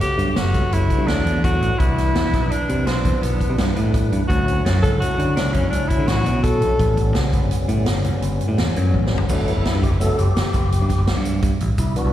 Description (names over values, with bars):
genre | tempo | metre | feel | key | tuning
progressive instrumental, band music in an uneven meter | 168 BPM | 7/4 | straight | unclear | A4 = 436 Hz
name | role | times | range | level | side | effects
breathy tenor saxophone | melody | 0.0-7.1 s | B3 to A4 | -23 LUFS | left 1 dB | slapback echo, tape echo
tonewheel organ | accompaniment | 0.0-12.1 s | E3 to B4 | -27 LUFS | left 2 dB | overdrive, fast rotary speaker, slapback echo
swinging big-band drum kit | drums | 0.0-12.0 s | crash cymbal, hi-hat, kick drum, snare drum, toms | -22 LUFS | equal | none
picked electric bass | bass | 0.2-12.1 s | F#1 to D3 | -20 LUFS | equal | none
tube shaker | percussion | 9.3-11.9 s | none | -43 LUFS | right 1 dB | none
room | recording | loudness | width
light reverb, studio reverb | live gig heard through the venue's PA, recital hall reverb | -17 LUFS | side -12 dB against mid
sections
0.0-9.3 A section; 9.3-12.1 B section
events
drum fill 8.9-9.3; tonewheel organ solo 9.3-12.1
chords
0.0 Gmaj7; 1.8 Cmaj7; 4.3 Dmaj7; 6.8 A7; 9.3 Gmaj7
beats
0.01 0.36 0.72 1.08 1.44 | 1.79 2.15 2.51 2.87 3.22 3.58 3.94 | 4.30 4.65 5.01 5.37 5.73 6.08 6.44 | 6.80 7.16 7.51 7.87 8.23 8.58 8.94 | 9.30 9.65 10.01 10.36 10.72 11.07 11.43 | 11.78